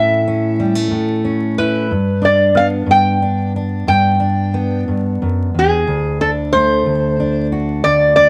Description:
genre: acoustic country blues, solo or duo.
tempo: 61 BPM (dotted quarters).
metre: 12/8.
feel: straight.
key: D major.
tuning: A4 = 440 Hz.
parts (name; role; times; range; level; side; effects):
lap resonator guitar; melody; 0.0-8.3 s; G#4 to G5; -16 LUFS; equal; plate reverb.
fingerpicked steel-string acoustic guitar; accompaniment; 0.0-8.3 s; D2 to F#4; -19 LUFS; equal; none.
room: moderate small room reverb, RT60 0.5 s.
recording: vinyl crackle.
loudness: -16 LUFS.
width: mono.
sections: 0.0-8.3 A section.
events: none.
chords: 0.0 A; 1.9 G; 5.9 D.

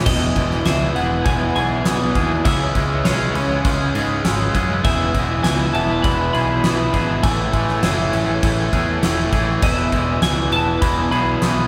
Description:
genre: post-rock.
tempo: 100 BPM.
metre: 4/4.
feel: straight.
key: E major.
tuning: A4 = 440 Hz.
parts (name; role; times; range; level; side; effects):
warm chamber string section; sustained chords; 0.0-11.7 s; G#3 to E5; -35 LUFS; equal; none.
twangy electric guitar; arpeggios; 0.0-11.7 s; E2 to G#4; -32 LUFS; equal; none.
overdriven electric guitar; riff; 0.0-11.7 s; E2 to C#4; -28 LUFS; equal; tremolo.
overdriven semi-hollow guitar; riff; 0.0-11.7 s; E2 to C#4; -25 LUFS; equal; none.
twelve-string electric guitar; melody; 0.1-11.7 s; C#5 to B5; -27 LUFS; equal; spring reverb.
glockenspiel with soft plastic mallets; arpeggios; 0.1-11.7 s; D#6 to E7; -32 LUFS; equal; none.
growling picked electric bass; bass; 0.1-11.7 s; E1 to G#2; -25 LUFS; equal; overdrive.
huge arena drum kit; drums; 0.1-11.6 s; crash cymbal, kick drum, snare drum; -24 LUFS; equal; none.
room: wet cathedral reverb, RT60 4.8 s.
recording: recorded in a church or concert hall.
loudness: -18 LUFS.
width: mono.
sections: 0.1-11.7 A section.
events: none.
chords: 0.1 Emaj7; 2.5 C#m7; 4.8 Emaj7; 7.2 Amaj7; 9.6 Emaj7.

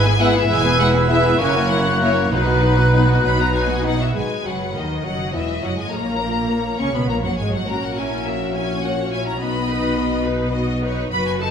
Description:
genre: quick classical-period movement for symphony orchestra.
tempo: 65-71 BPM (dotted quarters).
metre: 6/8.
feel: straight.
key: B major.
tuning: A4 = 440 Hz.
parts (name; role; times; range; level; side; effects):
clear studio violin section; melody; 0.0-11.5 s; B4 to C#6; -25 LUFS; left 4 dB; none.
clear clarinet; second line; 0.0-3.8 s; D#4 to E4; -27 LUFS; left 2 dB; none.
mellow oboe; second line; 0.0-3.8 s; B4 to C#5; -25 LUFS; right 1 dB; none.
rich studio violin section; second line; 0.0-11.5 s; D#4 to G#5; -29 LUFS; left 4 dB; none.
clear studio viola section; accompaniment; 0.0-11.5 s; D#3 to B4; -25 LUFS; right 1 dB; none.
warm bassoon; accompaniment; 0.0-3.8 s; A#3 to B3; -24 LUFS; right 1 dB; none.
warm studio cello section; bass; 0.0-11.5 s; D#2 to C#3; -24 LUFS; right 2 dB; none.
warm studio double bass section; bass; 0.0-11.5 s; E1 to D#2; -25 LUFS; right 2 dB; none.
small flute group; second line; 0.2-3.8 s; E6 to F#6; -24 LUFS; left 1 dB; none.
warm French horn section; sustained chords; 0.2-11.1 s; D#3 to F#4; -25 LUFS; left 3 dB; none.
timpani; percussion; 2.3-3.2 s; B2; -28 LUFS; equal; none.
room: wet recital hall reverb, RT60 1.4 s.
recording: minimal, uncompressed stereo recording.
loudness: -17 LUFS.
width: side -7 dB against mid.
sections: 0.0-4.1 A section; 4.1-11.5 A section.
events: none.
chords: 0.5 E; 1.4 F#7; 2.3 B; 5.9 F#/A#; 7.7 F#7/A#; 9.4 B.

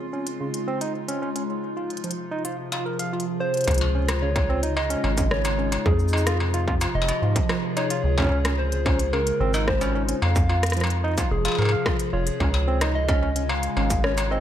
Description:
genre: IDM.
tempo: 110 BPM.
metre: 4/4.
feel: straight.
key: Db major.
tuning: A4 = 442 Hz.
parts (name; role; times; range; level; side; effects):
warbly tape-like pad; sustained chords; 0.0-14.4 s; C3 to Ab4; -30 LUFS; equal; chorus, built-in reverb, phaser.
bubbling stepped-filter texture; texture; 0.0-3.7, 13.0-14.4 s; Ab5 to C6; -43 LUFS; right 2 dB; chorus, built-in reverb.
barky tine electric piano; arpeggios; 0.1-14.4 s; Db3 to F5; -30 LUFS; right 2 dB; ping-pong delay.
industrial drum kit; drums; 0.3-14.3 s; cabasa, hi-hat, rim click, struck metal; -29 LUFS; left 1 dB; none.
soft struck synth lead; melody; 3.4-14.4 s; Ab4 to F5; -28 LUFS; left 1 dB; chorus, ping-pong delay.
deep acid bass; bass; 3.7-14.4 s; F1 to Ab2; -24 LUFS; equal; tube saturation.
electronic kick drum; drums; 3.7-14.0 s; none; -25 LUFS; equal; distortion.
room: light reverb.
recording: none.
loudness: -21 LUFS.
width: side -10 dB against mid.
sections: 0.0-3.7 A section; 3.7-14.4 B section.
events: none.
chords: 0.0 Dbmaj7; 1.5 Fm7; 3.7 Dbmaj7; 5.9 Fm7; 8.0 Dbmaj7; 10.2 Fm7; 12.4 Dbmaj7.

